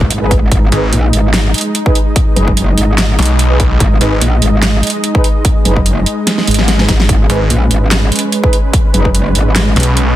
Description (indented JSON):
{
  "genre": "heavy wobble dubstep",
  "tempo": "146 BPM",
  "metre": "4/4",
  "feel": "swing 55% on 16ths, half-time",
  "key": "G# minor",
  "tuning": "A4 = 441 Hz",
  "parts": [
    { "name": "supersaw pad", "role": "sustained chords", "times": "0.0-10.2 s", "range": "G#3 to D#5", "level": "-18 LUFS", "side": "right 1 dB", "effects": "sidechain pumping, low-pass filter" },
    { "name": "metallic wobble bass", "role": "bass", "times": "0.0-9.7 s", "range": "F#1 to A#1", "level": "-12 LUFS", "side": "equal", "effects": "chorus, overdrive" },
    { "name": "electronic kick drum", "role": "drums", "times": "0.0-9.1 s", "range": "none", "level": "-12 LUFS", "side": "equal", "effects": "overdrive" },
    { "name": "dubstep drum kit", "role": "drums", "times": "0.1-10.1 s", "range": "handclaps, hi-hat, snare drum", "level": "-16 LUFS", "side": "right 1 dB", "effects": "none" },
    { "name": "mellow brass ensemble", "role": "stabs", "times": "0.2-9.1 s", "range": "D#4 to B4", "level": "-21 LUFS", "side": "right 1 dB", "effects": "ping-pong delay" },
    { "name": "snarling distorted saw bass", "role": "bass", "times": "0.7-4.2, 7.3-10.2 s", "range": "G#1 to B1", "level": "-12 LUFS", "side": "equal", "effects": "distortion, overdrive" },
    { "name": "swell", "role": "sound effects", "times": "6.4-7.1 s", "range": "none", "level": "-24 LUFS", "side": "left 2 dB", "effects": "none" }
  ],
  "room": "little or no reverb",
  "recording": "dense, heavily limited modern master",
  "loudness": "-9 LUFS",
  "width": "side -13 dB against mid",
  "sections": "0.0-10.2 A section",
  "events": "drum fill 6.3-7.1; swell 6.4-7.1",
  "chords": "0.0 G#m"
}